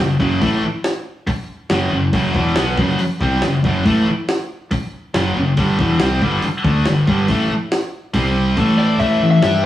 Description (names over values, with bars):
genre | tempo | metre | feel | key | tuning
hard rock | 140 BPM | 4/4 | straight | unclear | A4 = 440 Hz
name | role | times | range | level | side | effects
overdriven semi-hollow guitar | riff | 0.0-9.6 s | E2 to G4 | -22 LUFS | right 2 dB | none
scooped high-gain guitar | riff | 0.0-9.6 s | E2 to G4 | -18 LUFS | left 1 dB | distortion
fingered electric bass | bass | 0.0-9.7 s | E1 to G2 | -21 LUFS | equal | none
jungle sampler-style drum kit | drums | 0.2-9.5 s | hi-hat, kick drum, snare drum | -22 LUFS | equal | none
bluesy overdriven lead guitar | melody | 8.8-9.7 s | D5 to E5 | -18 LUFS | left 4 dB | distortion
room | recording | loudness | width
moderate stone room reverb, RT60 1.3 s | rough rehearsal-room recording, studio ambience | -15 LUFS | side -13 dB against mid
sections
0.0-9.0 A section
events
kick and snare drop out 8.1-9.0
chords
0.0 F#5; 5.6 G5; 8.1 C5; 8.6 A5